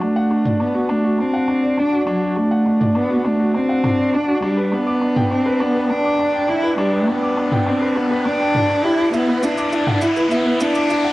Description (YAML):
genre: piano and strings electronica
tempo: 102 BPM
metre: 4/4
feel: straight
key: unclear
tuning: A4 = 441 Hz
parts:
  - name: dark cello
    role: melody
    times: 0.0-11.1 s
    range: F#3 to E4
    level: -18 LUFS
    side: equal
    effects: cassette tape
  - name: warm grand piano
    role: riff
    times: 0.0-11.1 s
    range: D4 to D6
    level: -21 LUFS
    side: equal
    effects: cassette tape
  - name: riser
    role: sound effects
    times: 2.3-11.1 s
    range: none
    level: -30 LUFS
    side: equal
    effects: none
  - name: electronic toms and shaker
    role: drums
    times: 0.5-11.0 s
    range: none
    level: -23 LUFS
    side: equal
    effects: overdrive
room: wet small room reverb, RT60 0.6 s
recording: home recording on cassette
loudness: -16 LUFS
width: side -18 dB against mid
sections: 0.0-11.1 A section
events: build-up 0.0-11.1; riser 2.3-11.1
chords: 0.0 D; 4.4 G; 9.1 Esus2